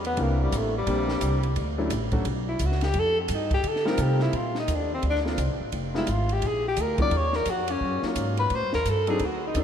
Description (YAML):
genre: jazz, small-group swing and bop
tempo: 173 BPM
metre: 4/4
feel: swing 63% on 8ths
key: unclear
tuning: A4 = 441 Hz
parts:
  - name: mellow tenor saxophone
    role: melody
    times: 0.0-9.6 s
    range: G3 to D5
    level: -27 LUFS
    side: left 1 dB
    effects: none
  - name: upright bass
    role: bass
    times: 0.0-9.6 s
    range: F1 to D3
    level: -28 LUFS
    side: equal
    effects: none
  - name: compact cocktail drum kit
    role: drums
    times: 0.0-9.6 s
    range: hi-hat, kick drum, ride cymbal, snare drum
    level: -32 LUFS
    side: equal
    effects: none
  - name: warm concert grand piano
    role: accompaniment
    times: 0.2-9.6 s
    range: F#3 to A4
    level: -31 LUFS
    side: left 1 dB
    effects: none
room: moderate cathedral reverb, RT60 5.5 s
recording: in a vast, echoing space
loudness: -23 LUFS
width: side -8 dB against mid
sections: 0.0-4.3 A section; 4.3-9.6 A section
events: tenor saxophone solo 0.0-9.6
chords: 0.2 C9; 1.6 Dmaj7; 2.9 F9; 4.3 Bbmaj9; 5.7 Fm7b5; 6.4 Bb; 7.1 Ebm9; 8.5 Am7b5